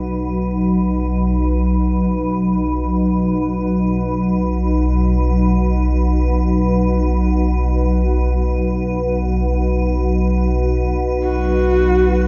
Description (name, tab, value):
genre	dark ambient drone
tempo	free time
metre	none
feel	none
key	unclear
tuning	A4 = 440 Hz
part	organ-like drone	drone	0.0-12.3 s	B1	-18 LUFS	equal	ensemble chorus, built-in reverb
part	icy glass pad	texture	0.0-12.3 s	B4	-31 LUFS	equal	chorus, built-in reverb
part	dark horsehead fiddle	melody	11.2-12.3 s	F#4	-19 LUFS	equal	delay
room	wet huge ambient reverb, RT60 7.1 s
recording	dreamy mix soaked in reverb, nothing above 7.7 kHz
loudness	-18 LUFS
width	mono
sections	0.0-12.3 A section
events	fade-in on ambient pad 0.0-12.3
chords	none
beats	free time